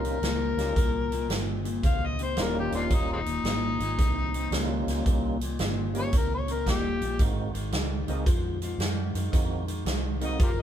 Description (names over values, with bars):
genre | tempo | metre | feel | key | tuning
electric blues shuffle | 112 BPM | 4/4 | swing 66% on 8ths | Eb mixolydian | A4 = 440 Hz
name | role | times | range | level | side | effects
overdriven harmonica | melody | 0.0-10.6 s | Ab3 to F5 | -31 LUFS | left 5 dB | none
percussive tonewheel organ | accompaniment | 0.0-10.4 s | G3 to Ab4 | -34 LUFS | right 5 dB | overdrive, fast rotary speaker
electric guitar through a small old amp | riff | 0.0-10.6 s | Eb2 to F3 | -33 LUFS | left 3 dB | none
vintage muted fingered electric bass | bass | 0.0-10.6 s | Eb1 to Gb2 | -31 LUFS | right 1 dB | none
swinging big-band drum kit | drums | 0.0-10.6 s | hi-hat, kick drum, snare drum | -28 LUFS | right 1 dB | none
room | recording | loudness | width
light reverb | band playing live in one room | -25 LUFS | side -10 dB against mid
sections
0.0-10.6 A section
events
harmonica solo 0.0-10.6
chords
0.0 Eb7; 7.2 Ab7